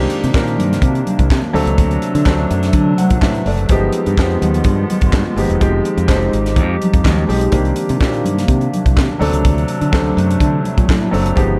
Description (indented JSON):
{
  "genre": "disco",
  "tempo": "125 BPM",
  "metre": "4/4",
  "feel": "straight",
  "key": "unclear",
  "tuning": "A4 = 440 Hz",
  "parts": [
    { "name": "warm baby grand piano", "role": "accompaniment", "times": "0.0-11.6 s", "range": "Eb3 to F#5", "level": "-22 LUFS", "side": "equal", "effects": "none" },
    { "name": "warbly tape-like pad", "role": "sustained chords", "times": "0.1-11.6 s", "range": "C3 to G4", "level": "-24 LUFS", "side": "equal", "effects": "chorus, built-in reverb" },
    { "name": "modern bright fingered electric bass", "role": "bass", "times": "0.0-11.6 s", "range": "E1 to D3", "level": "-20 LUFS", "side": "equal", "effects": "none" },
    { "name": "tight funk drum kit", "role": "drums", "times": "0.1-11.5 s", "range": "handclaps, hi-hat, kick drum, snare drum", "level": "-19 LUFS", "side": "equal", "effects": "none" },
    { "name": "congas", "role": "percussion", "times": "0.1-11.5 s", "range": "none", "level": "-27 LUFS", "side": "equal", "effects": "none" }
  ],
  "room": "light reverb",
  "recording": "dark, warm production",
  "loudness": "-15 LUFS",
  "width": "mono",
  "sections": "0.0-11.6 A section",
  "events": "none",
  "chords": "0.0 Cm9; 1.5 D7; 3.7 G7b9b13; 5.6 Fm9; 7.5 Cm9; 9.2 D7"
}